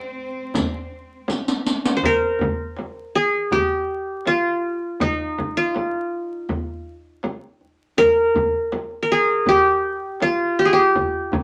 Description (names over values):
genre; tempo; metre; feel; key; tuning
Arabic maqam ensemble; 81 BPM; 4/4; straight; C maqam bayati; A4 = 436 Hz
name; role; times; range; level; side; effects
qanun; melody; 0.0-11.4 s; Eb4 to C5; -21 LUFS; equal; none
warm studio cello section; second line; 0.0-1.2 s; C4; -36 LUFS; equal; none
darbuka; percussion; 0.2-11.4 s; none; -35 LUFS; equal; none
frame drum; percussion; 0.5-11.4 s; none; -29 LUFS; equal; none
riq; percussion; 0.6-2.0 s; none; -25 LUFS; equal; none
room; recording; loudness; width
moderate small room reverb, RT60 0.6 s; vinyl crackle; -21 LUFS; mono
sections
0.0-2.0 A section; 2.0-11.4 B section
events
drum fill 1.3-2.0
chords
none